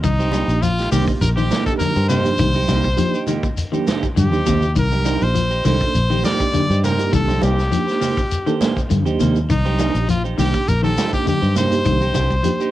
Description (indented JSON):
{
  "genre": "afrobeat",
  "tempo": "102 BPM",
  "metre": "4/4",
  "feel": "straight",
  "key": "C dorian",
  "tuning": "A4 = 439 Hz",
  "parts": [
    { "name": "brilliant trumpet", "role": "melody", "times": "0.0-12.7 s", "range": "Eb4 to D5", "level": "-22 LUFS", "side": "left 1 dB", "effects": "cassette tape" },
    { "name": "semi-hollow electric guitar", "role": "arpeggios", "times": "0.0-12.6 s", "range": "C3 to G3", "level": "-24 LUFS", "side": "left 6 dB", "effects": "cassette tape" },
    { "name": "fingered electric bass", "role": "bass", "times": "0.0-12.4 s", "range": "Bb1 to G2", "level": "-19 LUFS", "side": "equal", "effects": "none" },
    { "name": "vintage drum kit", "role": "drums", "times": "0.0-12.6 s", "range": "hi-hat, kick drum, snare drum", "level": "-26 LUFS", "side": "equal", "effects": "cassette tape" },
    { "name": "congas", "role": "percussion", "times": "0.0-12.6 s", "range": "none", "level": "-27 LUFS", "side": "right 6 dB", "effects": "none" },
    { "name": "shekere", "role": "percussion", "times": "0.0-12.7 s", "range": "none", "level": "-28 LUFS", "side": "left 3 dB", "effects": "none" },
    { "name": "clean electric guitar", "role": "stabs", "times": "0.2-12.7 s", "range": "Bb3 to C5", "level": "-27 LUFS", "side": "right 5 dB", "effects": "wide subtle chorus, cassette tape" },
    { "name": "reed electric piano", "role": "accompaniment", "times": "0.3-12.7 s", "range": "Bb3 to A4", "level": "-24 LUFS", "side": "right 5 dB", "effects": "fast tremolo, cassette tape" }
  ],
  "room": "light reverb",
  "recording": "home recording on cassette",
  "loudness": "-16 LUFS",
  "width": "side -14 dB against mid",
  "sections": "0.0-12.7 A section",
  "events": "none",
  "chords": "0.0 Cm9",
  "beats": "| 0.04 0.62 1.22 1.81 | 2.40 2.99 3.58 4.17 | 4.76 5.35 5.94 6.54 | 7.13 7.72 8.31 8.90 | 9.49 10.08 10.67 11.27 | 11.86 12.45"
}